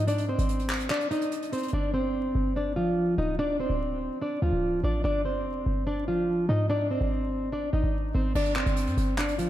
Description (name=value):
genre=hip hop, trap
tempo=145 BPM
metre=4/4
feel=half-time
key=unclear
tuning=A4 = 439 Hz
part: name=flamenco guitar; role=melody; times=0.0-9.5 s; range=F3 to Eb5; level=-27 LUFS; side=equal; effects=low-pass filter, analog delay
part: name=short 808-style bass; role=bass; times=0.0-9.5 s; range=D1 to Ab2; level=-29 LUFS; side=equal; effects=none
part: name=jazz brush drum kit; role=drums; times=0.1-1.7, 8.4-9.5 s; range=crash cymbal, handclaps, hi-hat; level=-34 LUFS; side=equal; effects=none
room=wet plate reverb, RT60 2.3 s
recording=dreamy mix soaked in reverb, vinyl crackle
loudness=-25 LUFS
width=side -13 dB against mid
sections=0.0-1.7 A section; 1.7-8.4 B section; 8.4-9.5 A section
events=kick muted 0.9-1.7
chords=0.1 Ab; 1.7 G5; 3.4 Dm; 5.0 G5; 6.7 Ab; 8.4 G5